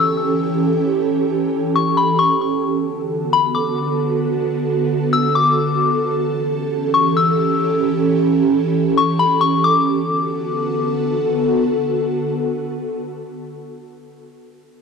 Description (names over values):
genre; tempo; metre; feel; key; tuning
hip hop; free time; none; none; B minor; A4 = 440 Hz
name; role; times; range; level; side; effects
soft synth bell; melody; 0.0-11.0 s; B5 to E6; -18 LUFS; left 5 dB; chorus, phaser, cassette tape, analog delay
ethereal airy pad; sustained chords; 0.0-14.0 s; D3 to A4; -18 LUFS; right 2 dB; ensemble chorus, built-in reverb
room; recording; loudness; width
moderate studio reverb, RT60 0.5 s; home recording on cassette; -16 LUFS; side -5 dB against mid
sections
0.0-9.6 A section; 9.6-13.3 B section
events
none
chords
0.0 A7; 2.4 Bm7; 6.0 A7; 9.6 Bm7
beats
free time